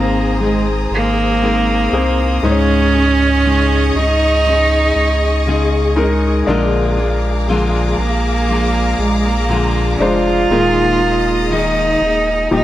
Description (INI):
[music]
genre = pop ballad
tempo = 60 BPM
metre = 4/4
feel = straight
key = Ab major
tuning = A4 = 440 Hz
[part]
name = warm cello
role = melody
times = 0.0-12.6 s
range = Ab3 to F4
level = -16 LUFS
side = right 2 dB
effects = none
[part]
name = warm baby grand piano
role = accompaniment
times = 0.0-12.6 s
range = Ab2 to Db5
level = -21 LUFS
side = left 2 dB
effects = none
[part]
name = warm studio string section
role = sustained chords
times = 0.0-12.6 s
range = G4 to Eb6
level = -22 LUFS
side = left 1 dB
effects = none
[part]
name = fingerpicked steel-string acoustic guitar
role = arpeggios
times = 0.0-12.6 s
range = Bb2 to Bb4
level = -21 LUFS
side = left 3 dB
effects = none
[part]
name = saturated sub bass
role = bass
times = 0.0-12.6 s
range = Eb1 to Db2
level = -18 LUFS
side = equal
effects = none
[sound]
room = light reverb, studio reverb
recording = none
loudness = -12 LUFS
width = side -13 dB against mid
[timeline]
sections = 0.0-12.6 A section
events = none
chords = 0.0 Abadd9; 2.4 Dbsus2; 6.5 Bb7; 10.5 Ebsus4